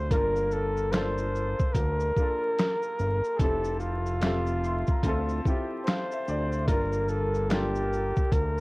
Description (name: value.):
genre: lo-fi hip hop.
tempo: 73 BPM.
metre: 4/4.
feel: swing 61% on 16ths.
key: G dorian.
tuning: A4 = 440 Hz.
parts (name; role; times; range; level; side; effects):
warm flugelhorn; melody; 0.0-8.6 s; F4 to C5; -30 LUFS; equal; low-pass filter.
felt-muted upright piano; accompaniment; 0.0-8.6 s; A3 to C6; -32 LUFS; left 1 dB; low-pass filter.
fat analog bass; bass; 0.0-8.6 s; F1 to D2; -30 LUFS; equal; transformer saturation.
boom bap sampler-style drum kit; drums; 0.1-8.6 s; finger snaps, hi-hat, kick drum, shaker, snare drum; -27 LUFS; equal; none.
room: moderate studio reverb, RT60 0.6 s.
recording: worn, warbling old tape, cassette tape, vinyl crackle, warbly pitch drift.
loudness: -25 LUFS.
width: side -24 dB against mid.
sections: 0.0-8.6 A section.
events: none.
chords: 0.1 Gm9; 3.4 Fmaj9; 5.0 Dm7; 6.7 Gm9.